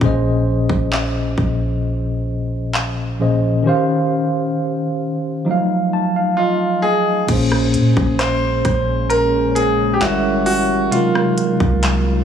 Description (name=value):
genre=contemporary R&B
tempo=66 BPM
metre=4/4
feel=straight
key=Bb dorian, Bb minor from 7.3 s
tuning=A4 = 441 Hz
part: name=tine electric piano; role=accompaniment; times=0.0-12.2 s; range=Bb2 to A5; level=-18 LUFS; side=equal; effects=medium stereo tremolo
part: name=soft 808-style bass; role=bass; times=0.0-12.2 s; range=G1 to Bb2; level=-22 LUFS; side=equal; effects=none
part: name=trap drum kit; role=drums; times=0.0-12.0 s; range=crash cymbal, handclaps, hi-hat, kick drum, rim click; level=-21 LUFS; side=equal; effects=none
part: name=clear grand piano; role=melody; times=6.4-12.2 s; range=F4 to C5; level=-19 LUFS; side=right 1 dB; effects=digital delay
part: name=deep dark ambient pad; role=sustained chords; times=8.3-12.2 s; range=C3 to F4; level=-24 LUFS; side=equal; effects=chorus, built-in reverb
room=light reverb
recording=studio reverb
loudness=-15 LUFS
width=side -8 dB against mid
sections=0.0-7.3 A section; 7.3-12.2 B section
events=drums muted 3.6-7.3; tine electric piano fill 5.5-7.3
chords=0.0 Bbm11; 3.6 Eb13; 5.5 F7b9; 7.3 Bbm9; 10.0 Gdim7; 10.9 Ab13/C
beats=| 0.01 0.92 1.83 2.74 | 3.65 4.56 5.47 6.38 | 7.29 8.20 9.10 10.01 | 10.92 11.83